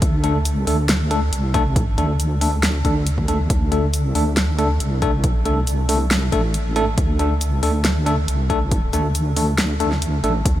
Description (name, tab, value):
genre	deep dubstep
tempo	138 BPM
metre	4/4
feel	half-time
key	unclear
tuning	A4 = 440 Hz
part	deep soft wobble bass	bass	0.0-10.6 s	A1 to D2	-20 LUFS	equal	chorus
part	deep house drum kit	drums	0.0-10.5 s	hi-hat, shaker, snare drum	-24 LUFS	equal	none
part	electronic kick drum	drums	0.0-10.5 s	none	-21 LUFS	equal	none
part	bell-like tine electric piano	stabs	0.2-10.3 s	A3 to A4	-23 LUFS	left 1 dB	medium stereo tremolo, dub echo
room	light reverb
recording	none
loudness	-17 LUFS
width	side -13 dB against mid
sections	0.0-10.6 A section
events	kick drops out 9.6-10.5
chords	0.0 D5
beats	| 0.02 0.46 0.89 1.32 | 1.76 2.19 2.63 3.06 | 3.50 3.93 4.37 4.80 | 5.24 5.67 6.11 6.54 | 6.98 7.41 7.85 8.28 | 8.72 9.15 9.59 10.02 | 10.46